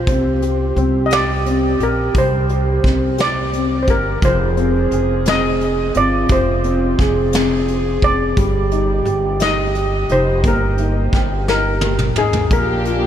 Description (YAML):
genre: six-eight pop ballad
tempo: 58 BPM (dotted quarters)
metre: 6/8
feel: straight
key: C minor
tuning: A4 = 440 Hz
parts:
  - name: steel pan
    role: melody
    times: 0.0-13.1 s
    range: Ab4 to Eb5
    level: -20 LUFS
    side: left 1 dB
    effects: analog delay
  - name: mellow French horn section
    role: second line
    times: 0.0-13.1 s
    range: F4 to Ab4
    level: -23 LUFS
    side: right 4 dB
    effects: analog delay
  - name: warm baby grand piano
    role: accompaniment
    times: 0.0-13.1 s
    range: C3 to G5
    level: -22 LUFS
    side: left 3 dB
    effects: ensemble chorus
  - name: upright bass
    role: bass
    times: 0.0-13.1 s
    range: F1 to C2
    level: -20 LUFS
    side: equal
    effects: none
  - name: soft brush drum kit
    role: drums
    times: 0.1-13.0 s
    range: hi-hat, kick drum, snare drum, toms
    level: -21 LUFS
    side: equal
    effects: none
  - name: warm studio string section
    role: sustained chords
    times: 12.5-13.1 s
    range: Bb3 to G4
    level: -22 LUFS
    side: left 2 dB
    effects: none
room: moderate huge ambient reverb, RT60 6.3 s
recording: dreamy mix soaked in reverb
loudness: -14 LUFS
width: side -10 dB against mid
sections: 0.0-13.1 A section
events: drum fill 11.5-12.5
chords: 0.1 Csus2; 4.2 Fm; 8.4 Eb; 12.5 Bb6